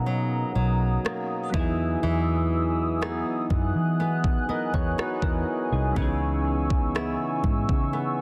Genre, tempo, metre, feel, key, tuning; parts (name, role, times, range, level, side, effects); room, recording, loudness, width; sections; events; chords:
contemporary R&B; 61 BPM; 4/4; straight; A4 = 439 Hz
soft electric-piano-like synth keys; accompaniment; 0.0-8.2 s; E3 to D#5; -33 LUFS; equal; chorus, tremolo
hollow soft pad; sustained chords; 0.0-8.2 s; B3 to F#6; -34 LUFS; equal; chorus
flamenco guitar; arpeggios; 0.0-8.2 s; B2 to G#4; -34 LUFS; equal; tape echo
vintage muted fingered electric bass; bass; 0.0-8.2 s; B1 to E3; -29 LUFS; equal
smooth R&B drum kit; drums; 1.1-7.9 s; kick drum, rim click; -30 LUFS; equal
light reverb; dense, heavily limited modern master; -25 LUFS; mono
0.0-8.2 A section
0.0 Bmaj7; 1.5 Emaj7; 6.0 C#m7